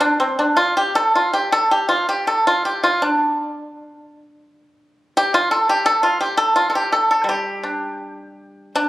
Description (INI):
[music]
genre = chinese traditional, Chinese solo plucked strings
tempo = 82 BPM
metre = 4/4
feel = uneven beats, rubato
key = D yu mode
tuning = A4 = 443 Hz
[part]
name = pipa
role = solo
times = 0.0-8.9 s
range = G3 to A4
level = -16 LUFS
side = equal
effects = none
[sound]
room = moderate recital hall reverb, RT60 1.5 s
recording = recorded on a phone in the room, club reverb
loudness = -16 LUFS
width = side -16 dB against mid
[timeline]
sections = 0.0-8.9 A section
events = none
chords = none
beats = | 0.02 0.77 1.52 2.26 | 3.01 3.74 4.46 5.16 | 5.85 6.55 7.28 8.01 | 8.75